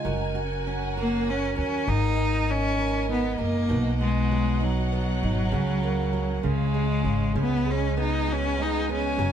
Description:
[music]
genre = pop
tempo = 66 BPM (dotted quarters)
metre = 6/8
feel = straight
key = unclear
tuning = A4 = 441 Hz
[part]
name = fingerpicked steel-string acoustic guitar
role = accompaniment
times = 0.0-9.3 s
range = G#2 to A#4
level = -29 LUFS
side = right 5 dB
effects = none
[part]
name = warm studio string section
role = sustained chords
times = 0.0-9.3 s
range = B2 to G#5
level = -36 LUFS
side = left 1 dB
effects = none
[part]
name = upright bass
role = bass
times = 0.1-9.3 s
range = F#1 to D#2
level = -27 LUFS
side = equal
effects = none
[part]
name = clear cello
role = melody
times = 1.0-9.3 s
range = F#3 to D#4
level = -26 LUFS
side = left 2 dB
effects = none
[sound]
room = moderate studio reverb, RT60 0.7 s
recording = band playing live in one room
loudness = -23 LUFS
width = side -9 dB against mid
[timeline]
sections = 0.0-7.4 A section; 7.4-9.3 B section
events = none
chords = 0.0 F#add9; 1.9 G#madd9; 3.7 B; 5.5 F#/C#; 6.4 C#; 7.4 C#7sus4

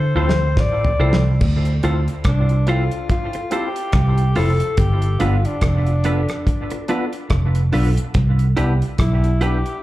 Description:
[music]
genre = lovers rock reggae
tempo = 71 BPM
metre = 4/4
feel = swing 59% on 16ths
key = D dorian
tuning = A4 = 440 Hz
[part]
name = breathy alto saxophone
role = melody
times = 0.0-9.8 s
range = D4 to D5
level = -25 LUFS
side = left 2 dB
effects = tape echo, slapback echo
[part]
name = barky tine electric piano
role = accompaniment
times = 0.0-9.6 s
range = B3 to A4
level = -27 LUFS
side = left 3 dB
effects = overdrive, ensemble chorus, tape echo, slapback echo
[part]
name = vintage muted fingered electric bass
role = bass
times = 0.0-9.6 s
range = F1 to D3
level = -17 LUFS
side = equal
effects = none
[part]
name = clean electric guitar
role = stabs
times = 0.2-9.6 s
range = D4 to C5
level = -28 LUFS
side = right 4 dB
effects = tape echo
[part]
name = damped 70s drum kit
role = drums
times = 0.3-9.8 s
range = crash cymbal, hi-hat, kick drum, rim click, snare drum, toms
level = -21 LUFS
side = equal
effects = none
[sound]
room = small room reverb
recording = live gig heard through the venue's PA, club reverb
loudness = -16 LUFS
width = side -16 dB against mid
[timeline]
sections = 0.0-1.4 A section; 1.4-9.8 B section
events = drum fill 0.0-1.4; alto saxophone solo 1.4-9.8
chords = 0.0 Dm7; 4.8 G7; 8.2 Cmaj7

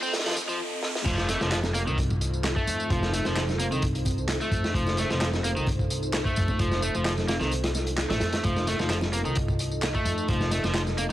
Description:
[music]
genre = breakbeat, breaks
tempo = 130 BPM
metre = 4/4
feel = swing 53% on 16ths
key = unclear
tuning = A4 = 438 Hz
[part]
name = deep dark ambient pad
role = sustained chords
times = 0.0-11.1 s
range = C4 to Eb5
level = -34 LUFS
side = equal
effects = chorus, built-in reverb, sidechain pumping, cassette tape
[part]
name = crunchy overdriven guitar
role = riff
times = 0.0-11.0 s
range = Eb3 to C4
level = -30 LUFS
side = equal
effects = cassette tape, analog delay
[part]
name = electronic tambourine and handclaps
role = drums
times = 0.0-11.1 s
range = none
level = -35 LUFS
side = equal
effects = cassette tape
[part]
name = riser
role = sound effects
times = 0.0-1.1 s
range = none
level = -34 LUFS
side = right 1 dB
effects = none
[part]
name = crunchy breakbeat drum kit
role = drums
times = 0.1-11.1 s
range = crash cymbal, hi-hat, kick drum, snare drum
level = -29 LUFS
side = equal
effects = high-pass filter on kick, cassette tape, high-pass filter on hats, high-pass filter on cymbals, high-pass filter on snare, high-pass filter on room
[part]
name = upright bass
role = bass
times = 1.1-11.1 s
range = F1 to F2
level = -29 LUFS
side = equal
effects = none
[part]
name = congas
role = percussion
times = 1.3-11.1 s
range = none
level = -37 LUFS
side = right 3 dB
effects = none
[sound]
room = small room reverb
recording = home recording on cassette, high-pass filter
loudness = -24 LUFS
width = side -14 dB against mid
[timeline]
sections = 0.0-1.1 A section; 1.1-11.1 B section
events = build-up 0.0-1.1; riser 0.0-1.1; filter sweep on ambient pad 0.0-1.1; break 0.6-1.1; drum fill 0.8; drop 1.1-11.1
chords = 0.0 F7

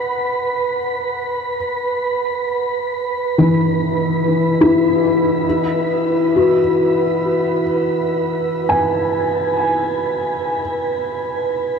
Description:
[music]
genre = ambient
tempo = free time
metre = none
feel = none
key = unclear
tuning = A4 = 439 Hz
[part]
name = felt-muted upright piano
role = arpeggios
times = 0.0-11.8 s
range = E3 to G#5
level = -17 LUFS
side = left 2 dB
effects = diffuse ambient delay
[part]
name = wind-like tuned noise texture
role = texture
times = 0.0-11.8 s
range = B4 to B5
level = -20 LUFS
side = right 3 dB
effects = built-in reverb
[sound]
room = wet shimmer reverb, RT60 8.4 s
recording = worn, warbling old tape, cassette tape, warbly pitch drift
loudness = -16 LUFS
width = side -6 dB against mid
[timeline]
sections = 0.0-11.8 A section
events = none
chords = 0.0 Esus2; 5.4 C#m7 (rootless)

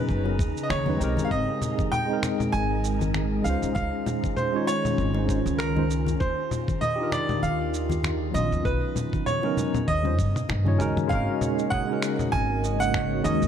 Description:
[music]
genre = sunset chillout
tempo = 98 BPM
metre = 4/4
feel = swing 56% on 16ths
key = unclear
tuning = A4 = 439 Hz
[part]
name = bright grand piano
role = melody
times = 0.0-13.5 s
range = Bb4 to Ab5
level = -29 LUFS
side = right 3 dB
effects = ping-pong delay
[part]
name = tine electric piano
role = accompaniment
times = 0.0-13.5 s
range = F#3 to Db5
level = -29 LUFS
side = moving between left 5 dB and right 4 dB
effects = medium stereo tremolo, auto-pan, ping-pong delay
[part]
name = ethereal airy pad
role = sustained chords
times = 0.0-13.5 s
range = C#3 to A#5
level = -32 LUFS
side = equal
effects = ensemble chorus, built-in reverb
[part]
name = wind-like tuned noise texture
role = texture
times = 0.0-11.1 s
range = Ab4 to Bb5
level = -42 LUFS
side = right 6 dB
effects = built-in reverb
[part]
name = upright bass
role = bass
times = 0.1-13.5 s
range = F#1 to G2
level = -27 LUFS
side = equal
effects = none
[part]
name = dusty soul sampler-style drum kit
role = drums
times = 0.1-13.5 s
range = congas, finger snaps, shaker, toms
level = -32 LUFS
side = left 1 dB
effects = overdrive
[part]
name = electronic kick drum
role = drums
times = 0.1-13.1 s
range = none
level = -28 LUFS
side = equal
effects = overdrive
[part]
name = bongos and congas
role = percussion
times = 0.3-11.1 s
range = none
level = -33 LUFS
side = left 4 dB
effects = none
[part]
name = concert harp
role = arpeggios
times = 11.1-13.5 s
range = Gb4 to Eb5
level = -35 LUFS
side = right 3 dB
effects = ping-pong delay
[sound]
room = light reverb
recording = dark, warm production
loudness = -23 LUFS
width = side -8 dB against mid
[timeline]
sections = 0.0-11.1 A section; 11.1-13.5 B section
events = filter sweep on tine electric piano 0.0-11.1; drum fill 9.9-11.1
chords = 0.0 Bmaj9; 1.3 Abmaj9; 3.5 Dbmaj9; 6.2 Ebmaj9; 8.7 Bmaj9; 9.9 Eb13; 11.1 Ab9sus4

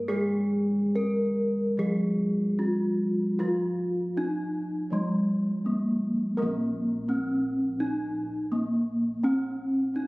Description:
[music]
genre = Javanese gamelan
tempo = 69-84 BPM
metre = 4/4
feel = straight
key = Bb slendro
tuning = A4 = 440 Hz
[part]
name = gamelan-type bronze metallophone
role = melody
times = 0.0-10.1 s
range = Ab3-40c to Bb4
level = -28 LUFS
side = equal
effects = none
[part]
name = gamelan-type bronze metallophone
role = accompaniment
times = 0.0-6.4 s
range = F3+20c to Ab3-40c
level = -28 LUFS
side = equal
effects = none
[part]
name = gamelan-type bossed gongs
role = bass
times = 0.0-10.1 s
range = Bb1 to Bb4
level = -32 LUFS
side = equal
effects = none
[sound]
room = moderate scoring stage reverb, RT60 1.6 s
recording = recorded on a phone in the room, studio reverb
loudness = -25 LUFS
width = side -22 dB against mid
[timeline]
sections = 0.0-6.4 A section; 6.4-10.1 B section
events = none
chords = none

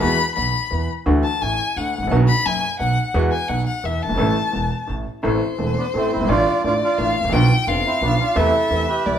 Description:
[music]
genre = tango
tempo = 173 BPM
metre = 3/4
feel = rubato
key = A minor from 5.2 s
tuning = A4 = 437 Hz
[part]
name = warm violin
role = second line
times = 0.0-9.2 s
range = C5 to B5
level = -22 LUFS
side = left 3 dB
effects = none
[part]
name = clear grand piano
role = accompaniment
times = 0.0-9.2 s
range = E1 to A4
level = -22 LUFS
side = equal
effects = none
[part]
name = upright bass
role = bass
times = 0.0-9.2 s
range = E1 to E2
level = -22 LUFS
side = right 2 dB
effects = none
[part]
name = bandoneon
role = melody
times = 5.8-9.2 s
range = A3 to B4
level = -21 LUFS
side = right 4 dB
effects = none
[sound]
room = wet stone room reverb, RT60 1.0 s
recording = band playing live in one room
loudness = -17 LUFS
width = side -9 dB against mid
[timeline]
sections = 0.0-5.2 A section; 5.2-9.2 B section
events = violin solo 0.0-5.2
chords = 0.0 Eadd9; 1.1 Dadd9; 2.1 Bm; 3.1 Eadd9; 4.2 A; 5.2 Am; 6.3 Dmadd9/A; 7.3 Bdim; 8.4 Am/E

